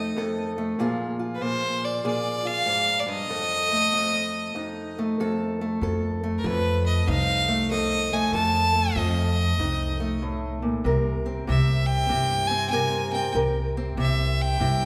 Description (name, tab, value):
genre	acoustic country blues, solo or duo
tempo	95 BPM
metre	4/4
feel	swing 64% on 8ths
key	F mixolydian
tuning	A4 = 442 Hz
part	bright fiddle	melody	0.0-14.9 s	Bb4 to A5	-27 LUFS	equal	none
part	fingerpicked steel-string acoustic guitar	accompaniment	0.0-14.9 s	F2 to Bb4	-30 LUFS	equal	none
part	upright bass	bass	5.8-14.9 s	C2 to G2	-28 LUFS	equal	none
room	wet concert hall reverb, RT60 2.1 s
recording	recorded in a church or concert hall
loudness	-25 LUFS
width	mono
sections	0.0-14.9 A section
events	none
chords	0.0 F7; 0.8 Bb5; 3.3 F7; 10.9 C7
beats	0.15 | 0.78 1.41 2.04 2.67 | 3.30 3.93 4.56 5.19 | 5.82 6.45 7.08 7.71 | 8.34 8.97 9.60 10.22 | 10.85 11.48 12.11 12.73 | 13.36 13.98 14.61